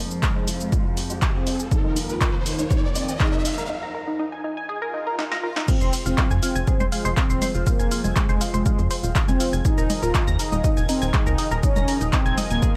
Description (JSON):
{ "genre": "melodic techno", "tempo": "121 BPM", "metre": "4/4", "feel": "straight", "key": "F minor", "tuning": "A4 = 441 Hz", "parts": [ { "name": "mellow synth brass", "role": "melody", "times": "0.0-12.8 s", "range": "Ab3 to F4", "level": "-30 LUFS", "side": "equal", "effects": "chorus, sidechain pumping, delay" }, { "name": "lush unison pad", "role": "sustained chords", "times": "0.0-12.8 s", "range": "Eb2 to Bb4", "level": "-36 LUFS", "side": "equal", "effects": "chorus, sidechain pumping" }, { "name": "tight sequenced synth", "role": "arpeggios", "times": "0.0-12.7 s", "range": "Eb4 to Bb6", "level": "-32 LUFS", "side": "equal", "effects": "chorus, phaser, sidechain pumping, tape echo" }, { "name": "overtone-sweeping drone", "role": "drone", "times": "0.0-12.8 s", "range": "F2 to F3", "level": "-41 LUFS", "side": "equal", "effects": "none" }, { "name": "riser and swell", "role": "sound effects", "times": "0.1-5.7 s", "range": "none", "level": "-36 LUFS", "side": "equal", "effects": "none" }, { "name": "punchy analog drum machine", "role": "drums", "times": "0.1-12.7 s", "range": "congas, crash cymbal, handclaps, hi-hat, shaker, snare drum", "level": "-30 LUFS", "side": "equal", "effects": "high-pass filter on perc, high-pass filter on hats, high-pass filter on snare, high-pass filter on cymbals, high-pass filter on room" }, { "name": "electronic kick drum", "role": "drums", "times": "0.2-12.7 s", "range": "none", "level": "-24 LUFS", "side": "equal", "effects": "none" }, { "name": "tight sequencer bass", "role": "bass", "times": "5.8-12.6 s", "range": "Eb1 to F2", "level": "-27 LUFS", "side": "equal", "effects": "sidechain pumping" } ], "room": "light reverb", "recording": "none", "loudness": "-22 LUFS", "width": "mono", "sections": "0.0-5.7 A section; 5.7-12.8 B section", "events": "build-up 0.0-5.7; filter sweep on synth arpeggio sound 0.0-5.7; filter sweep on analog polysynth 0.0-5.7; riser 0.1-3.7; break 3.7-5.7; swell 4.9-5.7; drum fill 5.2-5.7; drop 5.7-12.8", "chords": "0.0 Fm; 1.7 Ebsus4; 5.7 Fm; 9.6 Ebsus4" }